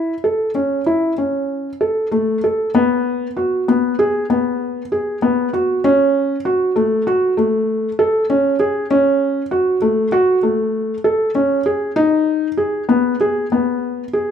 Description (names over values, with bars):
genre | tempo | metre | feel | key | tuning
contemporary instrumental, contemporary | 97 BPM | 5/4 | straight | F# dorian | A4 = 440 Hz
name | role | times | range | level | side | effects
felt-muted upright piano | solo | 0.0-14.3 s | A3 to A4 | -15 LUFS | equal | none
room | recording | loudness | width
moderate recital hall reverb, RT60 1.4 s | minimal, uncompressed stereo recording | -15 LUFS | side -8 dB against mid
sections
0.0-2.7 A section; 2.7-14.3 B section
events
none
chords
none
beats
0.23 0.85 1.48 2.11 | 2.74 3.37 3.99 4.61 5.23 | 5.85 6.46 7.07 7.68 8.29 | 8.90 9.51 10.12 10.73 11.34 | 11.96 12.57 13.19 13.81